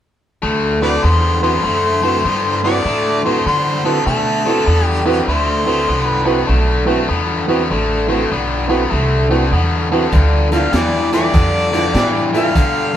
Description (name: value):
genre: electric blues shuffle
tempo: 99 BPM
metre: 4/4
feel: swing 65% on 8ths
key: D mixolydian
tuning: A4 = 438 Hz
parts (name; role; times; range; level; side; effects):
- biting overdriven guitar; riff; 0.4-13.0 s; G2 to B3; -17 LUFS; left 2 dB; none
- upright bass; bass; 0.4-13.0 s; A1 to D3; -19 LUFS; equal; none
- bright harmonica; melody; 0.8-6.5, 10.5-13.0 s; A4 to F5; -19 LUFS; equal; overdrive
- dark grand piano; accompaniment; 0.8-13.0 s; B3 to A5; -19 LUFS; right 3 dB; none
- crunchy breakbeat drum kit; drums; 10.1-12.7 s; hi-hat, kick drum, snare drum; -18 LUFS; equal; none
room: wet studio reverb, RT60 0.6 s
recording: band playing live in one room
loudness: -13 LUFS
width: side -10 dB against mid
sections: 0.4-13.0 A section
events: grand piano fill 9.2-10.1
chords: 0.4 D13; 10.1 G13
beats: | 0.43 1.03 1.64 2.25 | 2.85 3.46 4.06 4.67 | 5.28 5.88 6.49 7.09 | 7.70 8.31 8.91 9.52 | 10.13 10.73 11.34 11.95 | 12.55